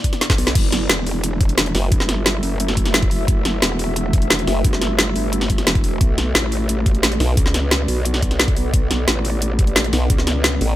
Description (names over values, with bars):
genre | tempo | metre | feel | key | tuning
dark technical drum and bass | 176 BPM | 4/4 | straight | F# phrygian | A4 = 440 Hz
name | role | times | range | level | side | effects
deep dark ambient pad | sustained chords | 0.0-10.8 s | A3 to E5 | -26 LUFS | right 1 dB | chorus, built-in reverb, sidechain pumping
drum and bass drum kit | drums | 0.0-10.7 s | crash cymbal, hi-hat, snare drum | -19 LUFS | equal | overdrive
electronic kick drum | drums | 0.0-10.2 s | none | -18 LUFS | equal | overdrive
growl bass | bass | 0.4-10.6 s | E1 to C#2 | -21 LUFS | equal | chorus, tube saturation, sidechain pumping
formant-sweep wobble bass | bass | 1.7-1.9, 4.5-4.6, 7.2-7.4, 9.9-10.8 s | F#1 to B1 | -17 LUFS | equal | chorus
room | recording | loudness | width
digital ambience | none | -16 LUFS | side -14 dB against mid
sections
0.0-10.8 A section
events
drum fill 0.2-0.6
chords
0.0 Bm; 0.6 F#m7; 6.0 Bm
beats
0.21 | 0.55 0.90 1.24 1.58 | 1.92 2.26 2.60 2.94 | 3.28 3.62 3.96 4.30 | 4.64 4.99 5.33 5.67 | 6.01 6.35 6.69 7.03 | 7.37 7.71 8.05 8.39 | 8.74 9.08 9.42 9.76 | 10.10 10.44